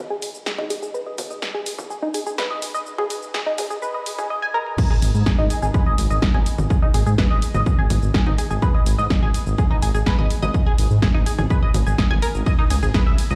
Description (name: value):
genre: melodic techno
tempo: 125 BPM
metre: 4/4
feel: straight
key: G# minor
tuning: A4 = 440 Hz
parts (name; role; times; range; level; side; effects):
- tight sequenced synth; arpeggios; 0.1-13.4 s; D#4 to G#5; -28 LUFS; equal; chorus, phaser, sidechain pumping, dub echo
- techno drum kit; drums; 0.2-13.4 s; congas, crash cymbal, hi-hat, ride cymbal, shaker, snare drum, toms; -29 LUFS; equal; overdrive, high-pass filter on perc, high-pass filter on hats, high-pass filter on snare, high-pass filter on toms, high-pass filter on cymbals
- electronic kick drum; drums; 4.8-13.0 s; none; -21 LUFS; equal; overdrive
- dark detuned saw bass; bass; 5.0-13.4 s; G#1 to G#2; -23 LUFS; equal; sidechain pumping
room: light reverb, digital ambience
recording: played on a big sound system in a bare room, large studio reverb, high-pass filter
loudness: -20 LUFS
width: mono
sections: 0.0-4.8 A section; 4.8-13.4 B section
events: build-up 0.0-4.8; filter sweep on synth arpeggio sound 0.0-4.8; filter sweep 0.0-4.8; drum fill 4.4-4.8; drop 4.8-13.4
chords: 0.0 G#m; 4.8 G#5; 12.5 C#5